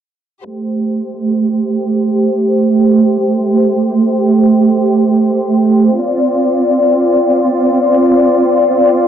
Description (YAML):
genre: liquid drum and bass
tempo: 173 BPM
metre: 4/4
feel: swing 53% on 16ths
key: A minor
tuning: A4 = 440 Hz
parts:
  - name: electronic hi-hat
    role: drums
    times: 0.4-9.0 s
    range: none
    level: -46 LUFS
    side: equal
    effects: none
  - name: rich studio string section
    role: sustained chords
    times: 0.5-9.1 s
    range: A3 to D5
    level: -10 LUFS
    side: right 1 dB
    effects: none
room: moderate spring reverb, RT60 1.4 s, studio reverb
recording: low-pass filter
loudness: -10 LUFS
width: side -9 dB against mid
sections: 0.5-9.1 A section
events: filter sweep 0.5-9.1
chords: 0.5 Am7; 6.0 Dm7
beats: | 0.45 0.80 1.14 1.49 | 1.84 2.18 2.53 2.88 | 3.22 3.57 3.92 4.26 | 4.61 4.96 5.30 5.65 | 6.00 6.35 6.69 7.04 | 7.39 7.73 8.08 8.43 | 8.77